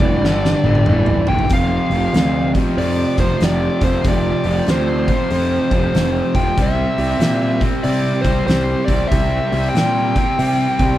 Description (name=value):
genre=blues rock power trio and southern rock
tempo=94 BPM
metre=4/4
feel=swing 64% on 8ths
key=unclear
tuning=A4 = 440 Hz
part: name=bluesy overdriven lead guitar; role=melody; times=0.0-11.0 s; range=C5 to G5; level=-21 LUFS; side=equal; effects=distortion
part: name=cranked stack guitar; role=riff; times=0.0-11.0 s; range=F2 to C4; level=-20 LUFS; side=equal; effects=overdrive
part: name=fuzz picked electric bass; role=bass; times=0.0-11.0 s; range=F1 to C3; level=-21 LUFS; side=equal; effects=overdrive
part: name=oversized low-tuned drum kit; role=drums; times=0.0-10.9 s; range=hi-hat, kick drum, snare drum, toms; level=-20 LUFS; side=equal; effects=none
room=studio ambience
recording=none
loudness=-14 LUFS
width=side -13 dB against mid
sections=0.0-1.5 A section; 1.5-11.0 B section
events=lead electric guitar solo 0.0-1.5; drum fill 0.2-1.5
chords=0.0 G5; 1.5 F5; 6.6 C